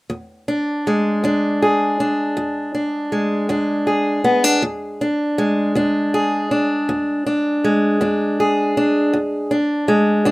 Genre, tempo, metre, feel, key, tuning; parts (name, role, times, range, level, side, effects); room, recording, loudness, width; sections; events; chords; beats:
blues; 53 BPM (dotted quarters); 12/8; straight; E mixolydian; A4 = 439 Hz
fingerpicked steel-string acoustic guitar; solo; 0.1-10.3 s; E2 to G#4; -16 LUFS; equal
moderate studio reverb, RT60 0.5 s; rough home demo mix; -16 LUFS; side -20 dB against mid
0.1-10.3 A section
0.1 E7
| 0.10 1.23 2.36 3.49 | 4.62 5.75 6.88 8.01 | 9.13 10.26